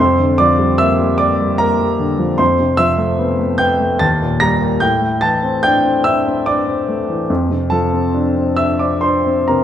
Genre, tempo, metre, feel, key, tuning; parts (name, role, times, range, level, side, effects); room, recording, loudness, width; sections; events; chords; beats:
classical, impressionist solo piano; 63-76 BPM; 3/4; rubato; A4 = 440 Hz
warm concert grand piano; solo; 0.0-9.6 s; Eb2 to Bb6; -13 LUFS; equal
wet recital hall reverb, RT60 1.6 s; recorded in a church or concert hall; -13 LUFS; side -10 dB against mid
0.0-9.6 A section
0.0 Bb69/F; 2.4 Fmaj7#11; 4.0 Eb; 4.8 Am7; 7.3 F6
0.79 1.59 | 2.40 3.19 4.01 | 4.83 5.65 6.47 | 7.29 8.14 9.03